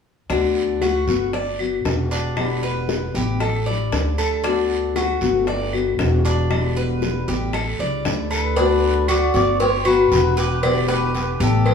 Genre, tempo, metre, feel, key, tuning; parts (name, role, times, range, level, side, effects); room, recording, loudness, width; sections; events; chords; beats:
latin, Cuban son and guajira; 116 BPM; 4/4; straight; D major; A4 = 441 Hz
fingerpicked steel-string acoustic guitar; accompaniment; 0.3-11.7 s; B2 to F#4; -22 LUFS; left 6 dB
Cuban tres; arpeggios; 0.3-11.7 s; D4 to D5; -25 LUFS; right 2 dB
upright bass; bass; 0.3-11.7 s; E1 to D2; -23 LUFS; equal
bongos and cowbell; percussion; 0.3-11.7 s; -26 LUFS; left 2 dB
guiro; percussion; 0.3-11.7 s; -34 LUFS; right 3 dB
claves; percussion; 0.8-11.7 s; -33 LUFS; equal
trumpet with cup mute; melody; 8.3-11.7 s; G4 to D5; -24 LUFS; equal
wet studio reverb, RT60 0.8 s; heard from further back in the room; -18 LUFS; side -6 dB against mid
0.3-8.6 A section; 8.6-11.7 B section
0.3 D6; 1.3 Gmaj7; 2.4 Em7; 3.4 A7sus4; 4.4 D6; 5.5 Gmaj7; 6.5 Em7; 7.5 A7sus4; 8.6 D6; 9.6 Gmaj7; 10.6 Em7
| 0.30 0.82 1.33 1.85 | 2.37 2.89 3.41 3.92 | 4.44 4.96 5.47 5.99 | 6.51 7.02 7.54 8.05 | 8.57 9.09 9.60 10.12 | 10.63 11.14 11.66